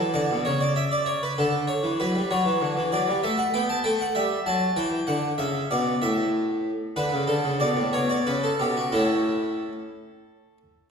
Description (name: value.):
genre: classical, baroque-style suite movement for harpsichord.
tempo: 60-66 BPM (dotted quarters).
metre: 6/8.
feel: rubato.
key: unclear.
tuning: A4 = 440 Hz.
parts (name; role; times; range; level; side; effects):
harpsichord; solo; 0.0-10.6 s; A2 to A5; -22 LUFS; equal; none.
room: wet recital hall reverb, RT60 1.7 s.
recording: recorded in a church or concert hall.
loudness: -22 LUFS.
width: side -6 dB against mid.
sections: 0.0-10.9 A section.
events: none.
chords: 0.5 N.C.; 1.4 D; 3.2 A5; 5.1 Bmadd9; 6.0 N.C.; 7.0 D5; 7.9 Bm9; 8.9 A.